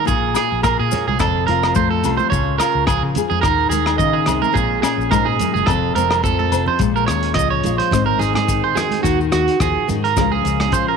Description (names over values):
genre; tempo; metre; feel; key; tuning
highlife guitar band; 107 BPM; 4/4; swing 54% on 16ths; Bb minor; A4 = 440 Hz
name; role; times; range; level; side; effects
nylon-string guitar; accompaniment; 0.0-11.0 s; F2 to Db5; -22 LUFS; left 13 dB; none
electric guitar at the edge of break-up; arpeggios; 0.0-11.0 s; Gb4 to Eb5; -19 LUFS; right 10 dB; tape echo
vintage muted fingered electric bass; bass; 0.1-10.7 s; F1 to Eb3; -23 LUFS; left 1 dB; none
crunchy breakbeat drum kit; drums; 0.1-10.9 s; hi-hat, kick drum, rim click; -23 LUFS; left 1 dB; none
maracas; percussion; 0.1-10.9 s; none; -32 LUFS; left 17 dB; none
agogo bells; percussion; 0.3-6.7 s; none; -28 LUFS; left 12 dB; none
congas; percussion; 0.9-10.7 s; none; -28 LUFS; right 11 dB; none
room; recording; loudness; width
light reverb, studio reverb; 1960s-style stereo with parts hard left and right; -15 LUFS; side -6 dB against mid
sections
0.0-6.8 A section; 6.8-11.0 B section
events
drum fill 6.2-6.8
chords
0.1 Bbm7; 1.2 F; 2.3 Db; 3.4 Eb5; 4.6 Bbm7; 5.7 F; 6.8 Bbm7; 7.9 Ab; 9.0 Ebm; 10.2 Db